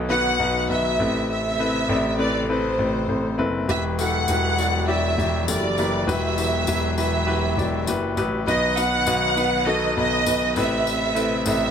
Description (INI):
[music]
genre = piano-driven pop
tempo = 100 BPM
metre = 4/4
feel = straight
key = E minor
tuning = A4 = 439 Hz
[part]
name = warm baby grand piano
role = accompaniment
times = 0.0-11.7 s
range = B2 to D5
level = -25 LUFS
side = left 3 dB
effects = plate reverb
[part]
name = dark studio string section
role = sustained chords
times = 0.0-11.7 s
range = C3 to B4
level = -32 LUFS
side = right 1 dB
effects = plate reverb
[part]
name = warm grand piano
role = bass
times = 0.0-11.7 s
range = E1 to B1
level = -25 LUFS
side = left 1 dB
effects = none
[part]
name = warm studio violin section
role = melody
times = 0.1-11.7 s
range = C5 to F#5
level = -23 LUFS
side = right 2 dB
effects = plate reverb
[part]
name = tambourine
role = percussion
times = 3.7-11.6 s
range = none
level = -33 LUFS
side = left 9 dB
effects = none
[sound]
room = moderate large studio reverb, RT60 0.8 s, small room ambience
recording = none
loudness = -19 LUFS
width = side -8 dB against mid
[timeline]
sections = 0.0-11.7 A section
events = none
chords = 0.0 B; 1.0 Amadd9; 3.7 Emadd9; 8.5 B; 10.6 Amadd9